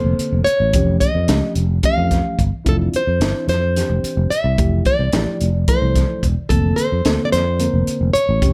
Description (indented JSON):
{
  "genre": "electric jazz fusion",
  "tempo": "219 BPM (eighths)",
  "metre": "7/8",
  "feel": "straight",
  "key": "unclear",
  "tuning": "A4 = 440 Hz",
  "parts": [
    { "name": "nylon-string guitar", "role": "melody", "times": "0.0-8.5 s", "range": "A4 to E#5", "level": "-23 LUFS", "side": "equal", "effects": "none" },
    { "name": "reed electric piano", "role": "accompaniment", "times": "0.0-8.5 s", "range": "D3 to Bb4", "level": "-26 LUFS", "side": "equal", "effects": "none" },
    { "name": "sustaining fretless electric bass", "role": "bass", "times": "0.0-8.5 s", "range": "E1 to E#2", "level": "-21 LUFS", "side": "equal", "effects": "none" },
    { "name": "crisp fusion drum kit", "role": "drums", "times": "0.2-8.5 s", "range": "hi-hat, kick drum, snare drum", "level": "-23 LUFS", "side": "equal", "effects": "none" }
  ],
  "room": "light reverb",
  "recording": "dark, warm production",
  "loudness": "-18 LUFS",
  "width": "mono",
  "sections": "0.0-8.5 A section",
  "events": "none",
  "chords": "0.0 Bbmaj9/F; 0.7 Aaug7/E#; 2.7 Dm9/F; 4.6 Fmaj9; 6.5 Bbmaj9/F"
}